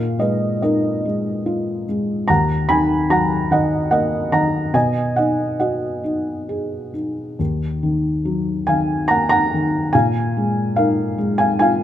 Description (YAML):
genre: classical, lyrical solo piano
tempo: 65-75 BPM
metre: 3/4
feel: rubato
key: Eb minor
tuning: A4 = 436 Hz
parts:
  - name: felt-muted upright piano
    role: solo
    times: 0.0-11.8 s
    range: Eb2 to Cb6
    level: -17 LUFS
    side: equal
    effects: none
room: light reverb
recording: close, detailed microphones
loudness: -17 LUFS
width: side -11 dB against mid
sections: 0.0-11.8 A section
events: none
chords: 0.0 Bb7sus4; 2.3 Ebm; 4.7 B6; 7.4 Ebm; 9.9 Bb7sus4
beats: 0.63 1.47 | 2.29 3.10 3.91 | 4.74 5.60 6.49 | 7.40 8.26 9.10 | 9.94 10.78 11.61